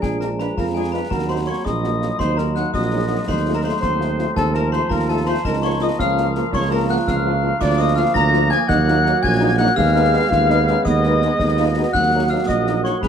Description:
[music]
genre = military-style march for wind band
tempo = 111 BPM (dotted quarters)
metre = 6/8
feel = straight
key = Bb minor, Eb minor from 7.6 s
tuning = A4 = 436 Hz
[part]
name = dark cornet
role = melody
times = 0.0-13.1 s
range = Ab4 to Bb5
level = -25 LUFS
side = equal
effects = none
[part]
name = dark woodwind section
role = second line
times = 0.0-13.1 s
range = Ab4 to Bb5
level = -27 LUFS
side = left 3 dB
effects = none
[part]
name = glockenspiel with hard plastic mallets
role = second line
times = 0.0-13.1 s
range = Ab5 to Bb6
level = -27 LUFS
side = left 5 dB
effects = none
[part]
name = hollow piccolo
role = second line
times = 0.0-13.1 s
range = Ab5 to Bb6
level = -28 LUFS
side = left 6 dB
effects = none
[part]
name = warm euphonium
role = second line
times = 0.0-13.1 s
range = Cb4 to Ab4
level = -26 LUFS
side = right 6 dB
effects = none
[part]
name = dark trombone section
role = sustained chords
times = 0.0-13.1 s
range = F3 to Cb4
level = -26 LUFS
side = equal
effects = none
[part]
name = mellow tuba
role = bass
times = 0.0-13.1 s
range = Bb1 to Ab2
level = -21 LUFS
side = right 3 dB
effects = none
[part]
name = concert snare drum, concert bass drum and clash cymbals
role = drums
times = 0.0-13.1 s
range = none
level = -28 LUFS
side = left 1 dB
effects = none
[part]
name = mellow French horn section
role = accompaniment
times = 0.2-12.9 s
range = F3 to F4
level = -26 LUFS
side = left 3 dB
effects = none
[sound]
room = light reverb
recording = close, detailed microphones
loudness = -16 LUFS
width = side -8 dB against mid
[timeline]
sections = 0.0-13.1 A section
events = none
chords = 0.0 Bb7; 1.1 Ebm; 3.3 F7/Eb; 5.4 Bbm/Db; 7.6 Bb/D; 8.7 Ebm; 9.8 Abm/Eb; 11.9 Ebm

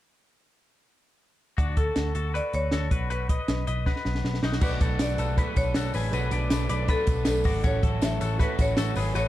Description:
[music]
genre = jangly indie pop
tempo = 159 BPM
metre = 4/4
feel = straight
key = unclear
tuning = A4 = 442 Hz
[part]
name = twelve-string electric guitar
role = arpeggios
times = 1.6-9.3 s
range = C#4 to D#5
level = -32 LUFS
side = left 5 dB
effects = spring reverb
[part]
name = vintage muted picked electric bass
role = bass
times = 1.6-9.3 s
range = G#1 to D2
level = -28 LUFS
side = equal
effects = tube saturation
[part]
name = compact cocktail drum kit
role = drums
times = 1.6-9.2 s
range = crash cymbal, hi-hat, kick drum, snare drum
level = -26 LUFS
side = equal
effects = none
[part]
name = marimba with medium hard mallets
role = melody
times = 1.8-9.3 s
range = A4 to E5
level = -31 LUFS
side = equal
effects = none
[part]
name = crunchy overdriven guitar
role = accompaniment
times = 4.6-9.3 s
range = A2 to E4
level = -36 LUFS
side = right 6 dB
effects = none
[part]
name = warm upright piano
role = accompaniment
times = 4.6-9.3 s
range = C#4 to B4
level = -37 LUFS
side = right 2 dB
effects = none
[part]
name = tambourine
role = percussion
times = 4.6-9.2 s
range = none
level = -44 LUFS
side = left 9 dB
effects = none
[sound]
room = light reverb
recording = dark, warm production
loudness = -23 LUFS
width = side -14 dB against mid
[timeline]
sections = 1.6-4.6 A section; 4.6-9.3 B section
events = drum fill 3.9-4.6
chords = 1.6 Dmaj7; 2.9 B; 4.6 Bm7; 7.6 A6

